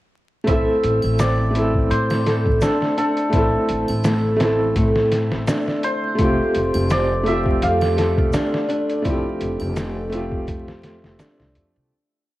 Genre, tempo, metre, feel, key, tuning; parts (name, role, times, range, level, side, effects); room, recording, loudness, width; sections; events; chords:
trip hop; 84 BPM; 4/4; swing 55% on 16ths; A minor; A4 = 439 Hz
felt-muted upright piano; accompaniment; 0.4-11.9 s; F3 to A4; -22 LUFS; equal; tremolo, cassette tape
santur; melody; 0.5-11.2 s; A4 to F5; -26 LUFS; left 1 dB; cassette tape, tape echo
nylon-string guitar; arpeggios; 0.5-11.5 s; A3 to A4; -24 LUFS; equal; cassette tape, analog delay
upright bass; bass; 0.5-11.9 s; F1 to A2; -23 LUFS; equal
trip hop sampler-style drum kit; drums; 0.5-11.7 s; hi-hat, kick drum, snare drum; -24 LUFS; equal; cassette tape
triangle and egg shaker; percussion; 1.0-11.4 s; -39 LUFS; left 1 dB
dark analog pad; sustained chords; 7.2-11.9 s; A4; -30 LUFS; right 1 dB
small room ambience; home recording on cassette, vinyl crackle; -17 LUFS; side -16 dB against mid
0.5-11.9 groove
fade-out 8.1-11.9
0.5 Am; 6.2 Fadd9